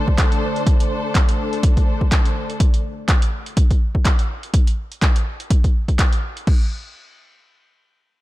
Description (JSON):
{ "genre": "acid house", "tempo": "124 BPM", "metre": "4/4", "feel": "swing 57% on 16ths", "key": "unclear", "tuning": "A4 = 439 Hz", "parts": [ { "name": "warbly tape-like pad", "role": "sustained chords", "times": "0.0-2.6 s", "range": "D3 to D5", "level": "-28 LUFS", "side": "left 2 dB", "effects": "chorus, built-in reverb, sidechain pumping" }, { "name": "bright symphonic string section", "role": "texture", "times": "0.0-2.6 s", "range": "D4 to C5", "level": "-26 LUFS", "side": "equal", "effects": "sidechain pumping" }, { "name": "electronic kick drum", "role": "drums", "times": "0.1-6.6 s", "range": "none", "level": "-16 LUFS", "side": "equal", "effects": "overdrive" }, { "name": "punchy analog drum machine", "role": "drums", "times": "0.2-6.6 s", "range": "crash cymbal, handclaps, hi-hat", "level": "-26 LUFS", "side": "equal", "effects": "none" } ], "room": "studio reverb", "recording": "dark, warm production", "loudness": "-16 LUFS", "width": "side -17 dB against mid", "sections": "0.0-6.5 A section; 6.5-8.2 B section", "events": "none", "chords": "0.0 D5; 6.5 N.C.", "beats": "0.18 | 0.67 1.15 1.63 2.12 | 2.60 3.08 3.57 4.05 | 4.54 5.02 5.50 5.99 | 6.47" }